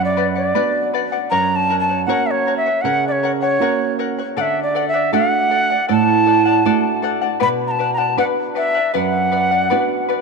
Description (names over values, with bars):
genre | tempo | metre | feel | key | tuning
andean folk, Andean ensemble | 78 BPM | 4/4 | straight | B minor | A4 = 440 Hz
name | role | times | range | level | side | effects
reedy quena | melody | 0.0-10.1 s | C#5 to B5 | -18 LUFS | left 1 dB | none
charango | accompaniment | 0.0-10.2 s | A4 to F#5 | -22 LUFS | left 11 dB | none
flamenco guitar | accompaniment | 0.0-10.2 s | F#2 to F#4 | -20 LUFS | right 11 dB | none
room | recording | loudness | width
wet plate reverb, RT60 3.9 s | 1960s-style stereo with parts hard left and right | -15 LUFS | side -4 dB against mid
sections
0.0-10.2 A section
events
none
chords
0.0 Bm; 1.3 F#; 4.4 D; 7.4 Bm